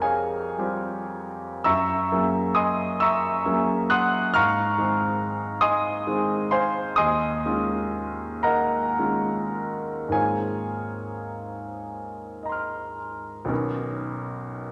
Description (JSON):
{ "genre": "classical, impressionist solo piano", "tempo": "34-48 BPM (dotted quarters)", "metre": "6/8", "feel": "rubato", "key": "Ab mixolydian", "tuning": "A4 = 439 Hz", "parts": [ { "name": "clear concert grand piano", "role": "solo", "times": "0.0-14.7 s", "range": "B1 to Gb6", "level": "-25 LUFS", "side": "equal", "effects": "none" } ], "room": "wet scoring stage reverb, RT60 1.8 s", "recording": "none", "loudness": "-25 LUFS", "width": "mono", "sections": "0.0-13.5 A section; 13.5-14.7 B section", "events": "none", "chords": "0.0 Fmadd9; 1.7 Gb9; 4.3 Ab6; 7.0 Eb9sus4; 10.1 Ab69; 13.5 Bmaj9" }